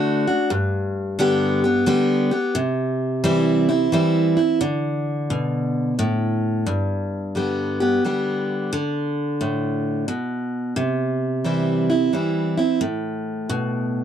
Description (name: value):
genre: country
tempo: 88 BPM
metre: 3/4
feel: swing 66% on 8ths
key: G major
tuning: A4 = 439 Hz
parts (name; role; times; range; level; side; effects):
- picked steel-string acoustic guitar; solo; 0.0-14.0 s; G2 to G4; -19 LUFS; equal; none
room: light reverb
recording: dry, close 1970s-style studio recording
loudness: -19 LUFS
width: side -9 dB against mid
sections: 0.0-6.7 A section; 6.7-14.0 B section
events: none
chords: 0.0 D; 0.5 G; 2.6 C; 4.6 D5; 6.7 G; 10.8 C; 12.8 Asus2